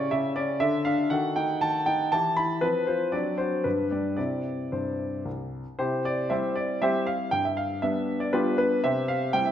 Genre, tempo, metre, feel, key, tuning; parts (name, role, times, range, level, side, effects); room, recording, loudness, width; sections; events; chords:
classical-period piano sonatina; 119 BPM; 3/4; rubato; C major; A4 = 440 Hz
clear grand piano; solo; 0.0-9.5 s; C2 to B5; -24 LUFS; equal
wet recital hall reverb, RT60 1.6 s; nothing above 11.0 kHz; -24 LUFS; side -10 dB against mid
0.0-5.8 A section; 5.8-9.5 B section
0.0 C#dim; 0.6 Dm; 1.1 D#dim; 2.1 Em; 2.6 F5; 3.1 D7/F#; 3.7 G; 4.2 C; 7.3 G7; 8.8 C